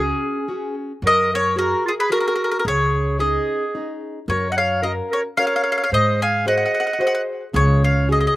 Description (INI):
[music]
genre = italian folk, Italian serenade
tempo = 110 BPM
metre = 3/4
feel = straight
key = F# major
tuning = A4 = 442 Hz
[part]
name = mandolin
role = melody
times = 0.0-8.3 s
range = G#4 to G#5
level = -21 LUFS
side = left 2 dB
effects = none
[part]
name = bright clarinet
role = second line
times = 0.0-8.4 s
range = C#4 to E#5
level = -23 LUFS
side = right 3 dB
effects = none
[part]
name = nylon-string guitar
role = accompaniment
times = 0.0-8.4 s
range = C#3 to B#4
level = -26 LUFS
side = left 1 dB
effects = none
[part]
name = upright bass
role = bass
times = 0.0-8.3 s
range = C#2 to G#2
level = -22 LUFS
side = equal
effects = none
[sound]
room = little or no reverb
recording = recorded outdoors, with no room sound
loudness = -17 LUFS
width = side -17 dB against mid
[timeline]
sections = 0.0-8.4 A section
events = none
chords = 0.0 C#sus4; 1.0 F#add9; 2.7 C#sus2; 4.3 F#; 5.9 G#7; 7.5 C#sus4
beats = 0.48 | 1.02 1.57 2.11 | 2.65 3.19 3.74 | 4.29 4.84 5.38 | 5.93 6.47 7.01 | 7.55 8.09